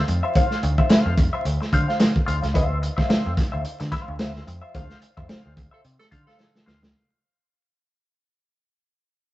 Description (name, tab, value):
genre	funk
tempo	109 BPM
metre	4/4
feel	swing 56% on 16ths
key	D minor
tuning	A4 = 440 Hz
part	direct-recorded clean electric guitar	accompaniment	0.0-6.9 s	F4 to F5	-27 LUFS	left 2 dB	wah, spring reverb
part	vintage muted picked electric bass	bass	0.1-6.9 s	C#2 to D3	-26 LUFS	equal	none
part	crunchy breakbeat drum kit	drums	0.1-6.9 s	hi-hat, kick drum, snare drum	-21 LUFS	equal	none
part	group handclap	percussion	0.9-2.1 s	none	-38 LUFS	left 2 dB	none
part	breathy tenor saxophone	second line	5.7-6.7 s	A4	-61 LUFS	right 3 dB	none
room	moderate studio reverb, RT60 0.6 s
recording	rough rehearsal-room recording, tube saturation, vinyl crackle, nothing above 8.0 kHz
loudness	-19 LUFS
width	side -16 dB against mid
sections	0.0-6.9 A section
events	fade-out 0.0-6.9; band accent 4.7-6.9; drum fill 6.4-6.9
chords	0.0 Dm9